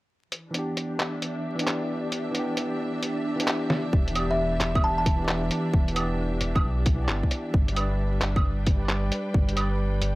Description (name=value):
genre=future garage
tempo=133 BPM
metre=4/4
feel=swing 64% on 16ths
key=E minor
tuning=A4 = 440 Hz
part: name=clear symphonic string section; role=sustained chords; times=0.3-10.2 s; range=E3 to G5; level=-33 LUFS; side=equal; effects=sidechain pumping, low-pass filter
part: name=lo-fi sampler-style drum kit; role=drums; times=0.3-10.1 s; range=claves, handclaps, hi-hat, snare drum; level=-28 LUFS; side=equal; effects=none
part: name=wind-like tuned noise texture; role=texture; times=0.8-3.9 s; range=D4 to D5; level=-38 LUFS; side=equal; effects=built-in reverb
part: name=bell-like tine electric piano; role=accompaniment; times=0.5-10.2 s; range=E3 to D5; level=-31 LUFS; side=right 1 dB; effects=sidechain pumping, low-pass filter, analog delay
part: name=warm sub bass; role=bass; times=3.9-10.2 s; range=E1 to B1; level=-28 LUFS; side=equal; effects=tube saturation, sidechain pumping
part: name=electronic kick drum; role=drums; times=3.9-9.5 s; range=none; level=-23 LUFS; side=equal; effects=none
part: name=kalimba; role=melody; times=4.3-5.0 s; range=E5 to A5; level=-29 LUFS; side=equal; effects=vintage 12-bit sampler grit, analog delay
room=light reverb, digital ambience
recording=dry, gritty hardware recording, vinyl crackle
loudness=-23 LUFS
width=side -20 dB against mid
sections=0.3-3.9 A section; 3.9-10.2 B section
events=filter sweep on string section 0.3-3.9; filter sweep on tine electric piano 0.3-3.9; drum fill 3.7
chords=0.3 Em7; 7.5 G